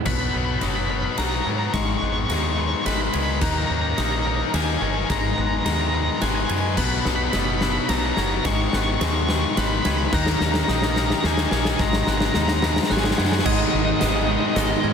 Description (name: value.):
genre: post-rock.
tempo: 107 BPM.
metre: 3/4.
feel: straight.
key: G# minor.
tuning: A4 = 442 Hz.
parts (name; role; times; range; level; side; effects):
twelve-string electric guitar; arpeggios; 0.0-14.9 s; G#2 to B4; -32 LUFS; left 1 dB; slapback echo.
fuzz guitar; riff; 0.0-0.6, 13.4-14.9 s; G#2 to B4; -28 LUFS; right 14 dB; distortion.
crunchy overdriven guitar; melody; 0.1-14.9 s; D#5 to C#6; -27 LUFS; right 2 dB; tremolo, slapback echo.
glockenspiel with brass mallets; arpeggios; 0.1-14.9 s; D#6 to G#6; -36 LUFS; right 7 dB; slapback echo.
tight distorted guitar; riff; 0.1-14.9 s; G#2 to D#4; -26 LUFS; left 13 dB; distortion.
deep dub fingered electric bass; bass; 0.1-14.9 s; F#1 to G#2; -26 LUFS; equal; none.
huge arena drum kit; drums; 0.1-14.7 s; crash cymbal, hi-hat, kick drum, ride cymbal, snare drum; -24 LUFS; equal; none.
room: small room reverb.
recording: none.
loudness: -19 LUFS.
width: side -7 dB against mid.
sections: 0.1-13.5 A section; 13.5-14.9 B section.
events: build-up 0.1-13.5; drum fill 0.1-13.5.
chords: 0.1 Bmaj7; 1.7 G#m7; 3.4 D#m7; 5.1 G#m7; 6.8 Bmaj7; 8.5 G#m7; 10.1 D#m7; 11.8 G#m7; 13.5 G#m.